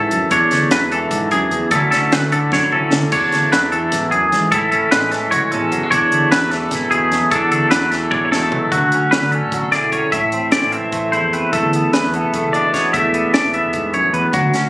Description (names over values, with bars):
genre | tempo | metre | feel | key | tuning
math rock and midwest emo | 300 BPM (eighths) | 7/8 | straight | unclear | A4 = 440 Hz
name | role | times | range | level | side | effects
twangy electric guitar | accompaniment | 0.0-14.7 s | D2 to G#4 | -18 LUFS | right 1 dB | analog chorus
twangy electric guitar | arpeggios | 0.0-14.7 s | F#4 to E5 | -16 LUFS | left 1 dB | harmonic tremolo
hollow-body short-scale fingered electric bass | bass | 0.0-14.6 s | E1 to E3 | -27 LUFS | equal | none
compact cocktail drum kit | drums | 0.1-14.6 s | crash cymbal, hi-hat, kick drum, snare drum, toms | -21 LUFS | equal | none
room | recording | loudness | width
light reverb | recorded on a phone in the room, club reverb | -13 LUFS | side -19 dB against mid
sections
0.0-8.7 A section; 8.7-14.7 B section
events
drum fill 2.5-3.1, 8.1-8.7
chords
0.3 E13sus4; 1.7 Dmaj9; 3.1 E13sus4; 4.5 Amaj9; 5.9 E13sus4; 8.7 Dmaj7; 10.1 Am; 11.5 E7sus4